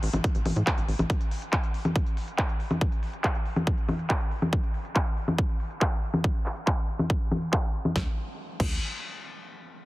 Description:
uplifting trance; 140 BPM; 4/4; straight; A4 = 436 Hz
tight sequencer bass; bass; 0.0-1.1, 8.0-8.8 s; A1 to A2; -29 LUFS; equal; sidechain pumping
big-room dance drum kit; drums; 0.0-8.7 s; congas, crash cymbal, handclaps, hi-hat, snare drum; -30 LUFS; left 1 dB; overdrive, low-pass filter on hats, low-pass filter on snare, low-pass filter on perc, low-pass filter on cymbals
electronic kick drum; drums; 0.2-8.7 s; -26 LUFS; equal; overdrive
digital ambience; heavily compressed radio sound, multiband compression; -25 LUFS; side -19 dB against mid
0.0-8.0 A section; 8.0-9.7 B section
filter sweep on drum 0.0-8.0

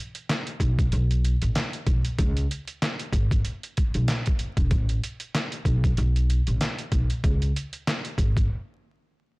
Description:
hip hop, boom-bap hip-hop; 95 BPM; 4/4; swing 57% on 16ths; C# minor; A4 = 439 Hz
trip hop sampler-style drum kit; drums; 0.1-8.5 s; handclaps, hi-hat, kick drum, snare drum; -25 LUFS; equal
upright bass; bass; 0.6-8.4 s; E1 to C#2; -24 LUFS; equal; tube saturation
digital ambience; blown-out, overdriven recording, vinyl crackle, overdrive; -22 LUFS; side -25 dB against mid
0.0-9.4 A section
break 8.5-9.4

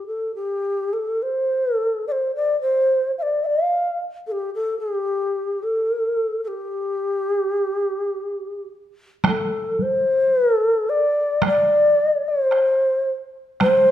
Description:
japanese traditional, Japanese chamber music; 54 BPM; 2/4; rubato; G suspended pentatonic; A4 = 445 Hz
mellow long shakuhachi; melody; 0.0-13.9 s; G4 to F5; -19 LUFS; left 1 dB
taiko ensemble; percussion; 9.2-13.9 s; -23 LUFS; right 2 dB
moderate recital hall reverb, RT60 1.4 s; minimal, uncompressed stereo recording; -19 LUFS; side -11 dB against mid
0.0-9.2 A section; 9.2-13.9 B section

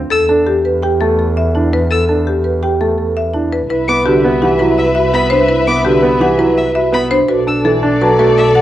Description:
classical, minimalist pattern music; 167 BPM; 5/4; straight; A4 = 440 Hz
marimba with hard mallets; melody; 0.1-8.6 s; G4 to A5; -17 LUFS; left 4 dB
rich violin; arpeggios; 0.1-8.5 s; E5 to E6; -20 LUFS; left 2 dB
warm double bass; bass; 0.1-8.6 s; B1 to E2; -19 LUFS; right 1 dB
warm baby grand piano; accompaniment; 0.3-8.4 s; D3 to D4; -18 LUFS; equal
marimba with soft mallets; arpeggios; 0.3-8.6 s; D4 to B4; -17 LUFS; right 4 dB
dark French horn; second line; 3.7-8.6 s; A4 to B4; -18 LUFS; equal
rich studio string section; sustained chords; 3.7-8.6 s; A4 to E5; -20 LUFS; left 2 dB
moderate large studio reverb, RT60 1.2 s; worn, warbling old tape, cassette tape, warbly pitch drift; -11 LUFS; side -13 dB against mid
0.0-3.7 A section; 3.7-8.6 B section
0.1 Em7; 3.7 Cmaj9; 7.3 Bm7

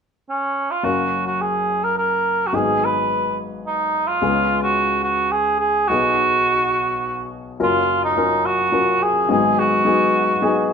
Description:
acoustic folk-pop ballad; 106 BPM; 3/4; straight; F# major; A4 = 440 Hz
mellow cor anglais; melody; 0.3-10.7 s; C#4 to B4; -18 LUFS; right 2 dB
warm upright piano; accompaniment; 0.8-10.7 s; F#1 to E#5; -22 LUFS; left 4 dB
light reverb; minimal, uncompressed stereo recording; -17 LUFS; side -6 dB against mid
0.8-7.6 A section; 7.6-10.7 B section
0.0 N.C.; 0.8 F#maj7; 2.5 G#m7; 4.2 C#5; 5.9 B6; 7.6 F#maj7; 9.3 G#m7

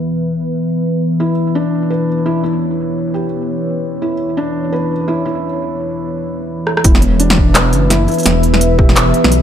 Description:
half-time drum and bass; 170 BPM; 4/4; swing 59% on 16ths, half-time; A4 = 441 Hz
deep dark ambient pad; sustained chords; 0.0-9.4 s; E3 to E5; -17 LUFS; left 1 dB; chorus, built-in reverb, sidechain pumping
felt-muted upright piano; arpeggios; 1.2-9.4 s; D4 to B4; -20 LUFS; right 1 dB; dub echo
drum and bass drum kit; drums; 6.7-9.4 s; handclaps, hi-hat, rim click, snare drum; -15 LUFS; equal; low-pass filter on snare, low-pass filter on hats, low-pass filter on room
dark detuned saw bass; bass; 6.8-9.4 s; E1 to B1; -14 LUFS; equal
electronic kick drum; drums; 6.8-8.9 s; -12 LUFS; equal
moderate echo chamber reverb, RT60 1.6 s, digital ambience; -13 LUFS; side -9 dB against mid
0.0-6.8 A section; 6.8-9.4 B section
break 5.4-6.8; drum fill 6.7; drop 6.8-9.4
0.0 E5

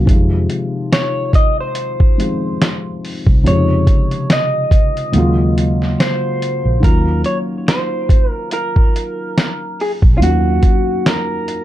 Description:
lo-fi hip hop; 71 BPM; 4/4; swing 57% on 16ths; Eb dorian; A4 = 440 Hz
felt-muted upright piano; accompaniment; 0.0-11.6 s; C3 to Gb4; -19 LUFS; left 1 dB; cassette tape, plate reverb
vintage muted fingered electric bass; bass; 0.0-10.6 s; Bb1 to F2; -16 LUFS; equal
lo-fi sampler-style drum kit; drums; 0.1-11.6 s; hi-hat, kick drum, snare drum; -13 LUFS; equal
electric guitar through a small old amp; melody; 0.9-11.6 s; F4 to Eb5; -20 LUFS; equal; plate reverb
light reverb; dark, warm production; -13 LUFS; side -13 dB against mid
0.0-6.8 A section; 6.8-11.6 B section
kick muted 5.1-6.8
0.1 Fm7; 3.5 Dbmaj9/F; 5.1 Ebm11; 6.8 Ebm9

